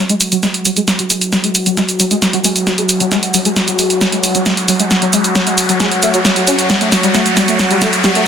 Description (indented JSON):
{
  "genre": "driving peak-time techno",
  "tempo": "134 BPM",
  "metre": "4/4",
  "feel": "straight",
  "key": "unclear",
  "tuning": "A4 = 440 Hz",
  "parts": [
    { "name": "overdriven synth lead", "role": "riff", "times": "0.0-8.2 s", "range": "F#3 to C#4", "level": "-17 LUFS", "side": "left 1 dB", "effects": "tube saturation, ensemble chorus, dub echo" },
    { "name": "analog drone", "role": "drone", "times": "0.1-8.3 s", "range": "F#3 to F#4", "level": "-18 LUFS", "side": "equal", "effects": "chorus" },
    { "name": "riser", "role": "sound effects", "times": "1.1-8.3 s", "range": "none", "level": "-20 LUFS", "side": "equal", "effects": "none" },
    { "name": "punchy analog drum machine", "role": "drums", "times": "0.1-8.2 s", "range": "hi-hat, shaker, snare drum", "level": "-14 LUFS", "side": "right 1 dB", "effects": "none" }
  ],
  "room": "moderate stone room reverb, RT60 1.2 s",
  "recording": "dense, heavily limited modern master",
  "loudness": "-11 LUFS",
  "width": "side -8 dB against mid",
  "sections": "0.0-8.3 A section",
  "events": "build-up 0.0-8.3; drum fill 0.0-8.3; filter sweep on analog synth lead 0.0-8.3; riser 1.1-8.3",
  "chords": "none"
}